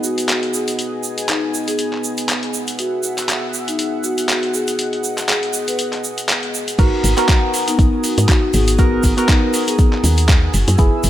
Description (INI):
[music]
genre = deep house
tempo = 120 BPM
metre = 4/4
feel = swing 56% on 16ths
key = G# minor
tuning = A4 = 441 Hz
[part]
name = marimba with soft mallets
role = melody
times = 0.0-11.1 s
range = B3 to B4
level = -22 LUFS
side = left 2 dB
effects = digital delay
[part]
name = warm analog pad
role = sustained chords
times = 0.0-11.1 s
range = B3 to E6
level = -26 LUFS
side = equal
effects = chorus, sidechain pumping
[part]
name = tube shaker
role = percussion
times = 0.0-11.1 s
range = none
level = -26 LUFS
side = right 6 dB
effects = none
[part]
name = dusty soul sampler-style drum kit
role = drums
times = 0.2-11.1 s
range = crash cymbal, handclaps, hi-hat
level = -21 LUFS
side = left 1 dB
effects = small room ambience
[part]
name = percussive organ stab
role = stabs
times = 6.8-11.1 s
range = B3 to A#4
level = -21 LUFS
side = right 1 dB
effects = chorus, phaser, sidechain pumping, digital delay
[part]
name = woody FM bass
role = bass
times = 6.8-11.1 s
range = F#1 to G#2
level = -16 LUFS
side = equal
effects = sidechain pumping
[part]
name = electronic kick drum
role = drums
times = 6.8-10.9 s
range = none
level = -14 LUFS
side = equal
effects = small room ambience
[sound]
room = light reverb, digital ambience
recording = none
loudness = -15 LUFS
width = side -12 dB against mid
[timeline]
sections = 0.0-6.8 A section; 6.8-11.1 B section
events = drop 6.8-11.1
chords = 0.0 G#m7; 2.5 F#9sus4; 6.8 G#m7; 10.5 F#9sus4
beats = 0.29 | 0.79 1.29 1.79 2.29 | 2.79 3.29 3.79 4.29 | 4.79 5.29 5.79 6.29 | 6.79 7.29 7.79 8.29 | 8.79 9.29 9.79 10.29 | 10.79